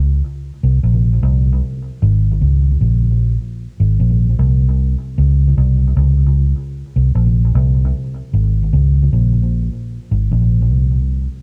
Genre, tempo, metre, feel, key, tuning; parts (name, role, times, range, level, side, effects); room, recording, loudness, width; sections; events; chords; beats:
reggae; 76 BPM; 4/4; straight; A4 = 438 Hz
vintage muted fingered electric bass; solo; 0.0-11.3 s; Ab1 to Db2; -15 LUFS; equal; cassette tape, analog delay
light reverb; home recording on cassette; -15 LUFS; mono
0.0-11.4 A section
0.43 1.22 | 2.01 2.79 3.58 4.38 | 5.17 5.96 6.75 7.54 | 8.32 9.12 9.90 10.69